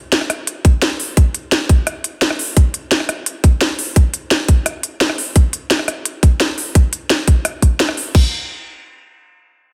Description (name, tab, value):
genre	drum and bass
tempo	172 BPM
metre	4/4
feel	straight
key	none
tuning	none
part	drum and bass drum kit	drums	0.1-8.2 s	crash cymbal, hi-hat, rim click, snare drum	-19 LUFS	equal	small room reverb
part	electronic kick drum	drums	0.6-8.2 s	none	-12 LUFS	equal	small room reverb
room	light reverb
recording	dense, heavily limited modern master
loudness	-16 LUFS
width	mono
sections	0.0-8.1 A section; 8.1-9.5 B section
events	drop 0.0-8.1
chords	none